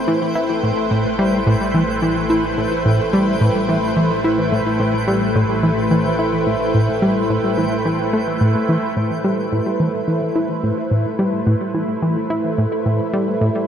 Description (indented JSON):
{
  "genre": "ambient, sequencer-driven space music",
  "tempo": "108 BPM",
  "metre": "4/4",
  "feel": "straight",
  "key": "A minor",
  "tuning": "A4 = 440 Hz",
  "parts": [
    { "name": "lush unison pad", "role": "sustained chords", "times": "0.0-13.7 s", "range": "A3 to C5", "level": "-20 LUFS", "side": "equal", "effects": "chorus, phaser" },
    { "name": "analog drone", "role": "bass", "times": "0.9-8.9 s", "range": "A1", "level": "-28 LUFS", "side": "equal", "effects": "chorus" },
    { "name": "twinkling granular texture", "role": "texture", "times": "0.0-9.0 s", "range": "G5", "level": "-33 LUFS", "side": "right 2 dB", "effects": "built-in reverb" },
    { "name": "plucky analog bass", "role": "riff", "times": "0.1-13.5 s", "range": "A2 to E4", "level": "-18 LUFS", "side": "equal", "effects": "tape echo" }
  ],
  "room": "wet huge ambient reverb, RT60 7.3 s",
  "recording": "dark, warm production",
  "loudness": "-16 LUFS",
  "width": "side -8 dB against mid",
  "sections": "0.0-9.0 A section; 9.0-13.7 B section",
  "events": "fade-in on synth drone 0.0-9.0",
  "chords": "0.0 Am7",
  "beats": "| 0.08 0.63 1.19 1.74 | 2.30 2.85 3.41 3.97 | 4.52 5.08 5.63 6.19 | 6.74 7.30 7.86 8.41 | 8.97 9.52 10.08 10.63 | 11.19 11.74 12.30 12.86 | 13.41"
}